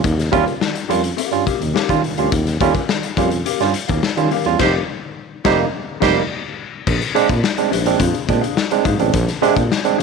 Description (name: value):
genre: funk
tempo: 106 BPM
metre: 4/4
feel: straight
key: unclear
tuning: A4 = 440 Hz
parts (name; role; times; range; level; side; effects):
- barky tine electric piano; stabs; 0.0-10.0 s; Bb2 to F4; -19 LUFS; right 13 dB; none
- mellow tuba; bass; 0.0-10.0 s; F1 to Eb3; -21 LUFS; left 1 dB; none
- raw garage drum kit; drums; 0.0-10.0 s; crash cymbal, hi-hat, kick drum, snare drum; -21 LUFS; left 6 dB; none
- mellow electric guitar; accompaniment; 0.3-10.0 s; Db4 to F5; -25 LUFS; left 16 dB; wide subtle chorus
- warm horn section; second line; 4.6-6.2 s; Eb4 to C5; -22 LUFS; right 11 dB; none
room: light reverb, small room ambience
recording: 1960s-style stereo with parts hard left and right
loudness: -15 LUFS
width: side -5 dB against mid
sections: 0.0-6.9 A section; 6.9-10.0 B section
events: band accent 4.6-6.9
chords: 0.0 Eb9; 4.6 F9sus4; 6.9 Bb9